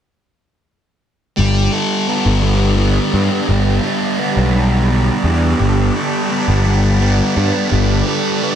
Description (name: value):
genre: rock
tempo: 57 BPM (dotted quarters)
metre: 6/8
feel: straight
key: G major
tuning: A4 = 440 Hz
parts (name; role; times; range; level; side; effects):
- soft string machine; sustained chords; 1.8-8.6 s; G4 to B5; -26 LUFS; right 5 dB; phaser, ensemble chorus
- thick fuzz guitar; riff; 1.4-8.6 s; G3 to A4; -16 LUFS; equal; distortion, phaser
- fuzz picked electric bass; bass; 1.4-8.0 s; G1 to G2; -15 LUFS; equal; overdrive
room: little or no reverb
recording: none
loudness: -13 LUFS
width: side -9 dB against mid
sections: 1.4-8.6 A section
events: none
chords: 1.4 Gadd9